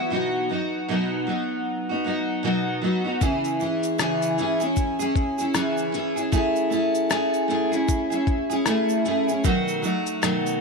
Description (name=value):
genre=acoustic pop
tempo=77 BPM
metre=4/4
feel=swing 60% on 16ths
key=unclear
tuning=A4 = 439 Hz
part: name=picked steel-string acoustic guitar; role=accompaniment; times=0.0-10.6 s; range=B2 to G#4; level=-22 LUFS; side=equal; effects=double-tracked left and right
part: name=dusty soul sampler-style drum kit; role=drums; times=3.2-10.6 s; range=kick drum, rim click, shaker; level=-27 LUFS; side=left 2 dB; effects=none
part: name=tube shaker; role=percussion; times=3.2-10.6 s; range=none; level=-40 LUFS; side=right 20 dB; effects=none
room=light reverb, small room ambience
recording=1960s-style stereo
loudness=-21 LUFS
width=side -4 dB against mid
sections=0.0-3.2 A section; 3.2-10.6 B section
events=none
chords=0.1 B; 3.2 C#m; 6.3 Amaj7; 9.4 B7